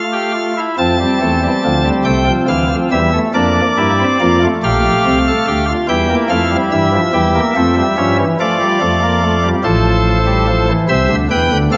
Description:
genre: classical, baroque-style 4-part fugue for pipe organ.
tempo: 48 BPM (dotted quarters).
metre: 12/8.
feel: straight.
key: F major.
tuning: A4 = 440 Hz.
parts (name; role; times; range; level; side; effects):
pipe organ, cornet; solo; 0.0-11.8 s; A1 to A5; -14 LUFS; equal; none.
room: wet scoring stage reverb, RT60 1.9 s.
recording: nothing above 7.7 kHz.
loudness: -14 LUFS.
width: mono.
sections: 0.8-11.8 A section.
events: none.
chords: 0.0 F; 3.3 Gm7/F; 5.9 Edim7; 8.4 F; 10.9 C.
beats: | 0.78 2.06 3.34 4.62 | 5.89 7.14 8.40 9.65 | 10.90.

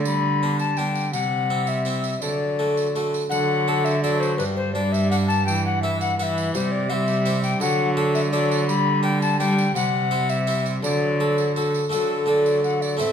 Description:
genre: classical, renaissance-style consort dance.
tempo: 167 BPM.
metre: 3/4.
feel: straight.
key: D mixolydian.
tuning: A4 = 437 Hz.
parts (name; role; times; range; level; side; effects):
mellow alto recorder; melody; 0.0-13.1 s; A4 to B5; -25 LUFS; left 5 dB; none.
harpsichord; accompaniment; 0.0-13.1 s; G2 to C5; -25 LUFS; right 1 dB; none.
warm viola; accompaniment; 0.0-13.1 s; E3 to C4; -27 LUFS; left 1 dB; none.
rich cello; bass; 0.0-13.1 s; G2 to D3; -25 LUFS; right 3 dB; none.
tambourine; percussion; 0.1-13.1 s; none; -36 LUFS; right 8 dB; none.
room: wet recital hall reverb, RT60 1.3 s.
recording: none.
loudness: -19 LUFS.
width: side -8 dB against mid.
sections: 0.0-3.3 A section; 3.3-11.9 A section; 11.9-13.1 B section.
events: none.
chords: 0.1 G/D; 1.1 C; 2.2 D; 4.4 G; 5.5 Em/G; 6.5 C; 7.6 D; 8.7 G/D; 9.8 C; 10.8 D.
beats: | 0.06 0.42 0.78 | 1.14 1.50 1.86 | 2.22 2.59 2.95 | 3.32 3.67 4.03 | 4.39 4.75 5.11 | 5.47 5.83 6.18 | 6.54 6.90 7.26 | 7.61 7.97 8.33 | 8.68 9.04 9.40 | 9.75 10.11 10.47 | 10.84 11.20 11.56 | 11.92 12.28 12.64 | 13.00.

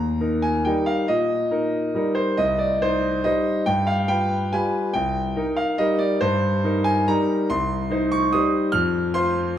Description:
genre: classical, piano waltz.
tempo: 141 BPM.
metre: 3/4.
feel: uneven beats, rubato.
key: unclear.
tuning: A4 = 440 Hz.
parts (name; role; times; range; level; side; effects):
bright concert grand piano; solo; 0.0-9.6 s; C2 to F6; -19 LUFS; equal; none.
room: wet recital hall reverb, RT60 1.7 s.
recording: dark, warm production.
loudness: -19 LUFS.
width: side -10 dB against mid.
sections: 0.0-9.6 A section.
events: none.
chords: 0.0 Eb; 2.4 Cm; 3.7 G7; 5.0 Cm7; 7.5 Cm; 8.7 F5.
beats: 0.21 0.66 | 1.09 1.51 1.95 | 2.38 2.81 3.25 | 3.67 4.09 4.53 | 4.95 5.37 5.80 | 6.21 6.63 7.07 | 7.49 7.91 8.33 | 8.74 9.15 9.58.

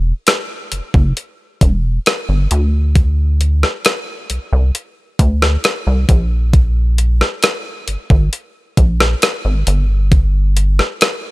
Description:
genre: contemporary R&B.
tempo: 67 BPM.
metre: 4/4.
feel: straight.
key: unclear.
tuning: A4 = 440 Hz.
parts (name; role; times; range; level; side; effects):
rubbery square bass; bass; 0.0-10.8 s; E1 to D2; -14 LUFS; equal; none.
crisp 8-bit digital drum machine; drums; 0.3-11.2 s; hi-hat, kick drum, rim click; -14 LUFS; equal; overdrive.
room: little or no reverb.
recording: none.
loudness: -13 LUFS.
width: side -20 dB against mid.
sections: 0.0-11.3 A section.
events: none.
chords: none.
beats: 0.27 1.16 2.06 | 2.96 3.85 4.75 5.64 | 6.54 7.43 8.33 9.22 | 10.12 11.01.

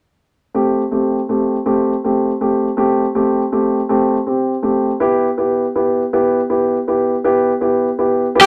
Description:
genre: pop.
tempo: 54 BPM (dotted quarters).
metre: 6/8.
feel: straight.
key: unclear.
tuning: A4 = 440 Hz.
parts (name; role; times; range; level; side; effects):
warm grand piano; accompaniment; 0.5-8.5 s; A3 to G4; -17 LUFS; equal; none.
overdriven slide guitar; melody; 8.4-8.5 s; G4; -6 LUFS; equal; none.
room: wet small room reverb, RT60 0.5 s.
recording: none.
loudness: -17 LUFS.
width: mono.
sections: 0.6-8.5 A section.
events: none.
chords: 0.6 Am7; 5.0 Em.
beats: | 0.55 1.67 | 2.79 3.90 | 5.02 6.13 | 7.25 8.37.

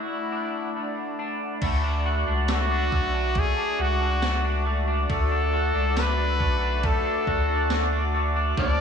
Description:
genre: dream pop.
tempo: 69 BPM.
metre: 4/4.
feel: straight.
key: D major.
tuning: A4 = 440 Hz.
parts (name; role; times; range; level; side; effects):
breathy trumpet; melody; 0.0-8.8 s; D4 to D5; -28 LUFS; left 2 dB; digital delay.
hollow soft pad; sustained chords; 0.0-8.8 s; A3 to D6; -33 LUFS; right 3 dB; chorus.
electric guitar at the edge of break-up; arpeggios; 0.0-8.8 s; F3 to F#4; -29 LUFS; equal; analog chorus, digital delay.
round analog bass; bass; 1.6-8.8 s; B1 to D2; -25 LUFS; left 1 dB; none.
gated 80s digital drum machine; drums; 1.6-8.8 s; crash cymbal, kick drum, ride cymbal, snare drum, tambourine; -30 LUFS; equal; gated reverb, gated reverb snare.
glockenspiel with soft plastic mallets; texture; 1.6-8.8 s; A5 to D6; -40 LUFS; right 5 dB; none.
overdriven electric guitar; accompaniment; 8.6-8.8 s; D3 to D4; -28 LUFS; right 5 dB; tremolo, analog chorus.
room: light reverb, digital ambience.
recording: small room ambience.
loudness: -22 LUFS.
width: side -6 dB against mid.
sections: 0.0-1.6 A section; 1.6-8.8 B section.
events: break 0.0-1.6.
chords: 0.0 Bm7; 1.6 D.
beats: 0.75 | 1.62 2.49 3.36 4.23 | 5.10 5.97 6.84 7.71 | 8.58.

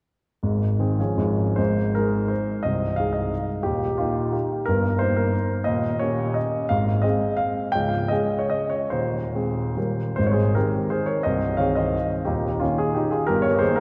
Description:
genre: classical, romantic triple-time dance for piano with dotted rhythms.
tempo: 136-193 BPM.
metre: 3/4.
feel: rubato.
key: Ab major.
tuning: A4 = 440 Hz.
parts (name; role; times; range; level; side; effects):
warm baby grand piano; solo; 0.4-13.8 s; C1 to G5; -23 LUFS; equal; none.
room: wet church reverb, RT60 2.8 s.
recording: dark, warm production.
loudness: -23 LUFS.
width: mono.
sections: 0.4-1.6 A section; 1.6-10.2 B section; 10.2-13.8 B section.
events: none.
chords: 0.4 Ab; 1.0 Db; 1.6 Ab; 2.6 Ab/C; 3.7 Eb; 4.7 Eb/G; 5.7 Eb7; 6.7 Ab; 7.7 Db5; 8.9 Ab/Eb; 9.8 Eb; 10.2 Ab; 11.2 Ab/C; 12.3 Eb; 13.3 Eb/G.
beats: | 0.43 0.80 1.18 | 1.59 1.96 2.31 | 2.65 2.98 3.33 | 3.65 3.99 4.34 | 4.67 5.00 5.34 | 5.66 6.00 6.36 | 6.70 7.04 7.39 | 7.74 8.10 8.50 | 8.91 9.35 9.77 | 10.18 10.56 10.91 | 11.23 11.59 11.95 | 12.28 12.63 12.98 | 13.30 13.62.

